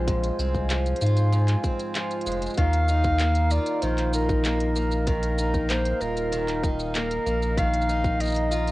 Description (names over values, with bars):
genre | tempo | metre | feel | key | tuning
folktronica | 96 BPM | 4/4 | straight | unclear | A4 = 440 Hz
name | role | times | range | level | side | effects
mellow accordion | sustained chords | 0.0-8.7 s | Eb4 to Ab5 | -33 LUFS | right 3 dB | cassette tape, plate reverb
picked acoustic archtop guitar | arpeggios | 0.0-8.7 s | Ab2 to F4 | -29 LUFS | left 2 dB | cassette tape, analog delay, plate reverb
warm sub bass | bass | 0.0-8.7 s | Eb1 to Ab2 | -25 LUFS | equal | none
electronic kick drum | drums | 0.1-8.2 s | none | -26 LUFS | equal | studio ambience, cassette tape
organic electronic drum kit | drums | 0.1-8.7 s | handclaps, hi-hat, shaker | -33 LUFS | equal | studio ambience, cassette tape
mellow clarinet | melody | 2.6-8.7 s | Bb4 to F5 | -27 LUFS | equal | cassette tape, plate reverb
room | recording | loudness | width
light reverb | home recording on cassette | -22 LUFS | side -18 dB against mid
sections
0.0-8.7 A section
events
none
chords
0.0 Ab6; 2.6 Ebsus2